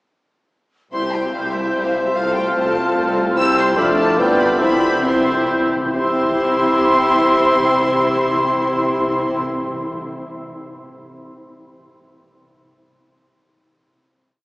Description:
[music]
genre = quick classical-period movement for symphony orchestra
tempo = 128-149 BPM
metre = 3/4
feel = rubato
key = C major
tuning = A4 = 440 Hz
[part]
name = rich chamber violin section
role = melody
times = 0.9-9.4 s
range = E5 to E6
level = -24 LUFS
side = left 1 dB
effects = none
[part]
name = hollow small flute group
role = second line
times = 0.9-9.4 s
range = C6 to G6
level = -23 LUFS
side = equal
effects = none
[part]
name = mellow clarinet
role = second line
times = 0.9-9.4 s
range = E4 to G4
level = -25 LUFS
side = equal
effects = none
[part]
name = rich chamber violin section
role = second line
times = 0.9-9.4 s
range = E4 to F5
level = -29 LUFS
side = left 1 dB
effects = none
[part]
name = warm cor anglais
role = second line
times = 0.9-9.4 s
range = C5 to E5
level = -25 LUFS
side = equal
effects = none
[part]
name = mellow bassoon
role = accompaniment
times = 0.9-9.4 s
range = A3 to C4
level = -22 LUFS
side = equal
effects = none
[part]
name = warm chamber viola section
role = accompaniment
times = 0.9-9.4 s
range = G3 to A4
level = -23 LUFS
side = equal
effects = none
[part]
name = warm French horn section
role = sustained chords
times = 0.9-9.4 s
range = B3 to G4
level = -26 LUFS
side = left 1 dB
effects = none
[part]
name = dark chamber double bass section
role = bass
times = 0.9-9.4 s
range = F1 to C2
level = -34 LUFS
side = equal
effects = none
[part]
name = rich chamber cello section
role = bass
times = 0.9-9.4 s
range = C2 to C3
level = -29 LUFS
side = equal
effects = none
[part]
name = timpani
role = percussion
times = 4.6-10.1 s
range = C3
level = -31 LUFS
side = equal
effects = none
[sound]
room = wet cathedral reverb, RT60 5.4 s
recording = heard from further back in the room, small speaker sound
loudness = -15 LUFS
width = side -21 dB against mid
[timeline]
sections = 0.9-6.0 A section; 6.0-8.6 final chord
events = slowing down 2.8-6.0; timpani fill 4.6-6.0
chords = 0.9 C; 2.2 F/C; 3.4 C; 3.8 Dm/F; 4.2 G7; 4.6 C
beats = | 0.93 1.34 1.75 | 2.16 2.56 2.97 | 3.37 3.78 4.19 | 4.61 5.05 5.50 | 5.96 6.41 6.85 | 7.30 7.75 8.20

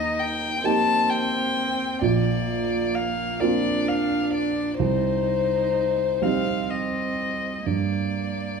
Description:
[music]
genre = neoclassical piano and strings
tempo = 43 BPM (dotted quarters)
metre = 6/8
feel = rubato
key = unclear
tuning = A4 = 440 Hz
[part]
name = warm violin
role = melody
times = 0.0-8.6 s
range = C5 to A5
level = -25 LUFS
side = left 4 dB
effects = none
[part]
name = warm cello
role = second line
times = 0.0-8.6 s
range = Bb3 to Eb4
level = -30 LUFS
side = right 2 dB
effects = none
[part]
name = dark grand piano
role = accompaniment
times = 0.0-8.6 s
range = Bb1 to G4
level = -25 LUFS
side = right 4 dB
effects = none
[sound]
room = moderate large studio reverb, RT60 1.4 s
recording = band playing live in one room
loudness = -21 LUFS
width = side -5 dB against mid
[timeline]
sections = 0.0-8.6 A section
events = none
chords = 0.0 Eb; 2.0 Bbadd9; 4.8 Cm; 7.7 Gm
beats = 0.64 | 2.02 3.41 | 4.80 6.21 | 7.65

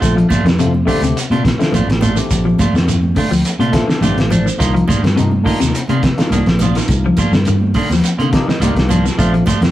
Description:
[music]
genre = afrobeat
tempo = 105 BPM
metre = 4/4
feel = swing 53% on 16ths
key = C dorian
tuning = A4 = 439 Hz
[part]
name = barky tine electric piano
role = accompaniment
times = 0.0-9.4 s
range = A3 to A5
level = -23 LUFS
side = left 2 dB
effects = none
[part]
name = electric guitar at the edge of break-up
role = stabs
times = 0.0-9.7 s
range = Eb3 to F4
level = -22 LUFS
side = right 3 dB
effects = none
[part]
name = fingered electric bass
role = bass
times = 0.0-9.7 s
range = A1 to C3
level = -17 LUFS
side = equal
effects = none
[part]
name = cloth-damped thuddy drum kit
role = drums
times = 0.0-9.7 s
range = hi-hat, kick drum, snare drum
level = -18 LUFS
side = equal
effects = none
[part]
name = congas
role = percussion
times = 0.0-9.6 s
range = none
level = -23 LUFS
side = right 2 dB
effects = none
[part]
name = shekere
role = percussion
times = 0.0-9.7 s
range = none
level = -24 LUFS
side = right 1 dB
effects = none
[part]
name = clean electric guitar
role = arpeggios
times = 0.2-9.7 s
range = C3 to F3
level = -19 LUFS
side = left 3 dB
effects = spring reverb
[sound]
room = moderate small room reverb, RT60 0.5 s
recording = rough rehearsal-room recording, warm saturation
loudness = -12 LUFS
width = side -14 dB against mid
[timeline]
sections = 0.0-9.7 A section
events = tine electric piano fill 3.5-4.6, 8.0-9.2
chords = 0.0 Bbmaj7; 4.6 Cm11; 9.2 Bbmaj7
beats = | 0.01 0.59 1.16 1.73 | 2.31 2.88 3.45 4.03 | 4.60 5.17 5.75 6.32 | 6.90 7.47 8.04 8.62 | 9.19

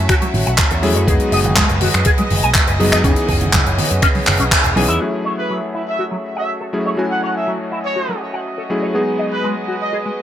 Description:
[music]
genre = nu-disco, nu disco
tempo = 122 BPM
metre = 4/4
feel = straight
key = F# dorian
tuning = A4 = 440 Hz
[part]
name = warm electric grand piano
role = accompaniment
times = 0.0-10.2 s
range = E3 to G#5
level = -21 LUFS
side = left 1 dB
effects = sidechain pumping, digital delay
[part]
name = warm symphonic violin section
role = sustained chords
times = 0.0-10.2 s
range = G#3 to E5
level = -26 LUFS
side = right 1 dB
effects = sidechain pumping, low-pass filter
[part]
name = picked electric bass with an envelope filter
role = bass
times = 0.0-5.0 s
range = E1 to F#2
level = -19 LUFS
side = equal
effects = none
[part]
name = electric guitar with an envelope filter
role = riff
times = 0.1-10.1 s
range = C#3 to G#5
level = -22 LUFS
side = left 1 dB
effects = ensemble chorus, low-pass filter, digital delay
[part]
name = electronic kick drum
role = drums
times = 0.1-4.6 s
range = none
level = -17 LUFS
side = equal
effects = none
[part]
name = tight funk drum kit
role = drums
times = 0.1-5.0 s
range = finger snaps, handclaps, hi-hat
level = -18 LUFS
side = equal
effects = gated reverb
[part]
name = congas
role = percussion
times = 0.2-4.9 s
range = none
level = -24 LUFS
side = right 3 dB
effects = none
[part]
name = clear trumpet section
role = melody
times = 5.4-10.0 s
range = B4 to F#5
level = -23 LUFS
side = right 1 dB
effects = digital delay
[sound]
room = moderate plate reverb, RT60 1.2 s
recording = bright 1980s-style digital production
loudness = -14 LUFS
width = side -10 dB against mid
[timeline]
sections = 0.0-5.0 A section; 5.0-10.2 B section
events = band accent 4.5; filter sweep on violin section 5.0-10.2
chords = 0.0 F#m7; 1.1 G#m7/F#; 3.0 C#m9/F#; 5.0 F#m7; 8.9 G#m7/F#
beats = 0.09 0.59 | 1.08 1.57 2.06 2.55 | 3.04 3.54 4.03 4.52 | 5.01 5.50 6.00 6.49 | 6.98 7.47 7.96 8.46 | 8.95 9.44 9.93

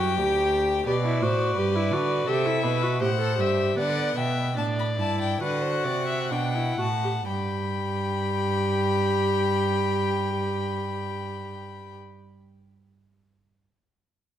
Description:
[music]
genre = classical, baroque-style fugue for string quartet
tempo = 60-90 BPM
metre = 4/4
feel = straight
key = G major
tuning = A4 = 440 Hz
[part]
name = warm violin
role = melody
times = 0.0-12.0 s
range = D5 to B5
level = -30 LUFS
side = left 9 dB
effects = none
[part]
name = rich violin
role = second line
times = 0.0-12.0 s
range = G4 to G5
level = -32 LUFS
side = left 3 dB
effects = none
[part]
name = warm viola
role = accompaniment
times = 0.0-12.0 s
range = B3 to A4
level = -28 LUFS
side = right 1 dB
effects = none
[part]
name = rich cello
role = bass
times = 0.0-12.0 s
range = D2 to D3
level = -28 LUFS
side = right 4 dB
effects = none
[sound]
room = moderate recital hall reverb, RT60 1.5 s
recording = none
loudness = -23 LUFS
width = side -10 dB against mid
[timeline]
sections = 0.0-7.3 A section; 7.3-11.3 B section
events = slowing down 0.0-7.3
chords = 0.0 G; 2.3 Am; 3.8 G; 5.4 D7; 7.3 G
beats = 0.19 | 0.87 1.57 2.27 3.01 | 3.77 4.57 5.41 6.31 | 7.28 8.28 9.28 10.28

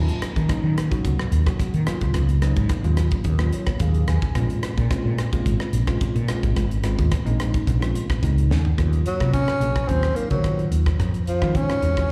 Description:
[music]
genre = electric jazz fusion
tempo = 108 BPM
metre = 4/4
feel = straight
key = Eb dorian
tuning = A4 = 440 Hz
[part]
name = bell-like tine electric piano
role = accompaniment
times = 0.0-12.1 s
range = Gb3 to Ab5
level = -32 LUFS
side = equal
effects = slapback echo
[part]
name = woody fretless electric bass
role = bass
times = 0.0-12.1 s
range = Ab1 to Eb3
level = -24 LUFS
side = equal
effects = none
[part]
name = crisp fusion drum kit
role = drums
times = 0.1-12.1 s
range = hi-hat, kick drum, rim click, snare drum, toms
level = -27 LUFS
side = equal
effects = none
[part]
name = warm tenor saxophone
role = melody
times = 9.1-12.1 s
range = F3 to Db4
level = -26 LUFS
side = equal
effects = slapback echo
[sound]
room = small room reverb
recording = live gig heard through the venue's PA, recital hall reverb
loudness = -22 LUFS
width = mono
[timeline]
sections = 0.0-8.8 A section; 8.8-12.1 B section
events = tine electric piano fill 3.3-4.4; drum fill 8.5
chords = 0.0 Ebm9; 4.4 Bbm9; 8.8 Ebm9; 11.0 Fm7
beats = 0.50 1.05 1.60 | 2.15 2.70 3.25 3.81 | 4.36 4.91 5.46 6.02 | 6.57 7.12 7.68 8.23 | 8.78 9.34 9.89 10.45 | 11.00 11.55 12.10

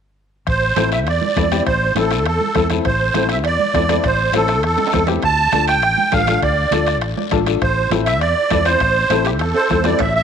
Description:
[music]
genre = latin, cumbia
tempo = 202 BPM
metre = 4/4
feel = straight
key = A minor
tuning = A4 = 441 Hz
[part]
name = musette accordion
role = melody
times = 0.5-10.2 s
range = G4 to A5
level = -17 LUFS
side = right 3 dB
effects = slapback echo
[part]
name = fretless electric bass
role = bass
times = 0.5-10.2 s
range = A1 to E2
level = -21 LUFS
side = equal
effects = none
[part]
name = bombo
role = percussion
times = 0.5-10.1 s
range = none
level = -26 LUFS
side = left 2 dB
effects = none
[part]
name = congas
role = percussion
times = 0.5-10.1 s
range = none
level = -27 LUFS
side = right 11 dB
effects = none
[part]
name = guiro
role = percussion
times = 0.5-10.2 s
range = none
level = -31 LUFS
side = left 12 dB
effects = none
[part]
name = timbales and cowbell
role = percussion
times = 0.5-10.1 s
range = none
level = -30 LUFS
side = right 11 dB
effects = none
[part]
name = warm upright piano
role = accompaniment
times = 0.8-10.0 s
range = C4 to A5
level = -22 LUFS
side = left 10 dB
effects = none
[sound]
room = moderate echo chamber reverb, RT60 2.1 s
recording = 1960s-style stereo with parts hard left and right, faint mains hum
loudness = -14 LUFS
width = side -7 dB against mid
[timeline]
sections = 0.5-10.0 A section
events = drum fill 4.8-5.2, 9.5-10.0; upright piano fill 7.0-7.6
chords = 0.5 Am; 5.2 Dm; 7.6 Am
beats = | 0.47 0.77 1.07 1.36 | 1.66 1.96 2.26 2.55 | 2.85 3.15 3.45 3.75 | 4.04 4.34 4.64 4.93 | 5.23 5.53 5.83 6.12 | 6.42 6.72 7.02 7.32 | 7.61 7.91 8.21 8.51 | 8.80 9.10 9.40 9.69 | 9.99

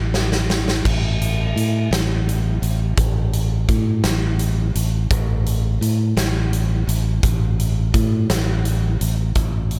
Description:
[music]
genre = post-rock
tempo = 56 BPM (dotted quarters)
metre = 6/8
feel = straight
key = unclear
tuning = A4 = 440 Hz
[part]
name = fingered electric bass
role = bass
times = 0.0-9.8 s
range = A1 to A2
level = -21 LUFS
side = equal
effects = none
[part]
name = big rock drum kit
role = drums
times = 0.1-9.8 s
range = crash cymbal, hi-hat, kick drum, snare drum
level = -24 LUFS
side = equal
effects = none
[sound]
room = little or no reverb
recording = none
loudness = -20 LUFS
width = mono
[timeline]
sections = 0.8-9.4 A section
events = drum fill 0.0-0.8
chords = none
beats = | 0.84 1.91 | 2.97 4.04 | 5.10 6.17 | 7.23 8.29 | 9.36

